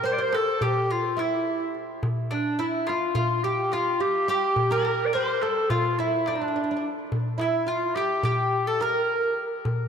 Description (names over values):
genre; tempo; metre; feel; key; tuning
Turkish makam ensemble; 212 BPM (eighths); 9/8; straight; unclear; A4 = 440 Hz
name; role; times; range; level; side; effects
warm clarinet; melody; 0.0-9.5 s; D4 to D5; -25 LUFS; left 1 dB; ping-pong delay
mandolin; second line; 0.0-9.4 s; D4 to C5; -32 LUFS; left 1 dB; none
oud; second line; 0.0-9.4 s; D4 to C5; -30 LUFS; right 4 dB; ping-pong delay
darbuka; percussion; 0.0-9.8 s; none; -30 LUFS; left 1 dB; none
room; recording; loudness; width
wet plate reverb, RT60 3.7 s; dreamy mix soaked in reverb; -23 LUFS; side -7 dB against mid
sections
0.0-9.9 A section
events
none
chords
none